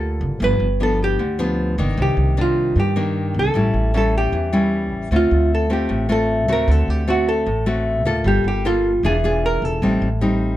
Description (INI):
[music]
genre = bossa nova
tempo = 153 BPM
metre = 4/4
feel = straight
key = G minor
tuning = A4 = 440 Hz
[part]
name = hollow-body jazz guitar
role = melody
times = 0.0-10.6 s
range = F4 to B4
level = -22 LUFS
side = right 1 dB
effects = none
[part]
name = nylon-string guitar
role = accompaniment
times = 0.0-10.6 s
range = G2 to A4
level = -21 LUFS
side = left 1 dB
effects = none
[part]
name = upright bass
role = bass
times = 0.0-10.6 s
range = E1 to G2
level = -21 LUFS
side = equal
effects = none
[sound]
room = little or no reverb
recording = close, detailed microphones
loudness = -16 LUFS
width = side -14 dB against mid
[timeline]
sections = 0.0-10.6 A section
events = none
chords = 0.4 G7; 2.0 Cm9; 3.5 A7; 5.1 Dm7; 6.7 D7; 8.2 Gm9; 9.0 E7b9; 9.8 Am7b5